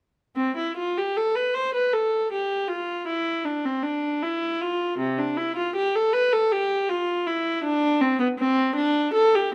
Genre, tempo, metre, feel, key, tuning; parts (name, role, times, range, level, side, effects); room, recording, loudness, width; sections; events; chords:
classical, baroque-style suite movement for unaccompanied viola; 79 BPM; 3/4; rubato; C major; A4 = 441 Hz
warm viola; solo; 0.4-9.5 s; C3 to C5; -24 LUFS; equal
light reverb; -24 LUFS; mono
0.4-9.5 A section